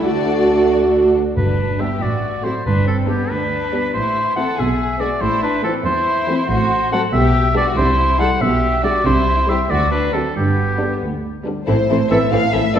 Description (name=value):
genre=quick classical-period movement for symphony orchestra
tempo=93 BPM (dotted quarters)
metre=6/8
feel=straight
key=G major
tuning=A4 = 440 Hz
part: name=rich studio violin section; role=melody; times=0.0-12.8 s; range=B3 to F5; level=-24 LUFS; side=left 3 dB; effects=none
part: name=rich studio violin section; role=second line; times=0.0-12.8 s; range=G3 to A4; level=-27 LUFS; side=left 2 dB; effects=none
part: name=rich studio viola section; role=accompaniment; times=0.0-12.8 s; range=D3 to D4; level=-25 LUFS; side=right 1 dB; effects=none
part: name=mellow French horn section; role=sustained chords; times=0.0-1.1, 11.7-12.8 s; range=A3 to F#4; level=-19 LUFS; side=right 1 dB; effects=none
part: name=rich studio cello section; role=bass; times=0.0-12.8 s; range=D2 to F#4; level=-23 LUFS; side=right 2 dB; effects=none
part: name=rich studio double bass section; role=bass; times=0.0-12.8 s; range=G1 to D2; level=-22 LUFS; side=right 2 dB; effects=none
part: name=clear oboe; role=second line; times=1.4-12.8 s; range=G4 to F#5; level=-20 LUFS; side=equal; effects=none
part: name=timpani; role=percussion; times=1.4-3.3 s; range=G2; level=-25 LUFS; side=equal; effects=none
part: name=dark clarinet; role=second line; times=11.7-12.8 s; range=C5 to F5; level=-24 LUFS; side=left 4 dB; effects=none
part: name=concert flute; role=second line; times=12.1-12.8 s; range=E6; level=-28 LUFS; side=right 2 dB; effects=none
part: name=dark bassoon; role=accompaniment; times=12.1-12.8 s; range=E3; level=-21 LUFS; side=equal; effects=none
room=wet scoring stage reverb, RT60 1.7 s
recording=heard from further back in the room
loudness=-15 LUFS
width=side -9 dB against mid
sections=0.0-1.4 A section; 1.4-11.7 B section; 11.7-12.8 C section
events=none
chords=0.0 D; 1.4 G; 2.0 F#dim/A; 2.7 G; 3.9 Am; 4.6 G#dim/B; 5.2 Am; 6.5 F#dim/A; 7.1 G/B; 7.8 C; 8.4 G/B; 9.1 C; 9.7 D7; 10.4 G; 11.7 Am